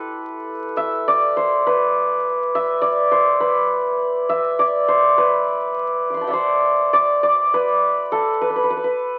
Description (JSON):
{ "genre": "indian classical", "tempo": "102 BPM", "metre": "5/4", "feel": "straight", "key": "E raga darbari", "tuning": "A4 = 440 Hz", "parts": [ { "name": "santur", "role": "solo", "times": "0.0-9.2 s", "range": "E4 to D6", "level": "-19 LUFS", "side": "equal", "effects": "none" } ], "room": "light reverb", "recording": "very old 78 rpm record, vinyl crackle", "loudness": "-19 LUFS", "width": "mono", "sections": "0.0-5.2 A section; 5.2-9.2 B section", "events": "none", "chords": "none" }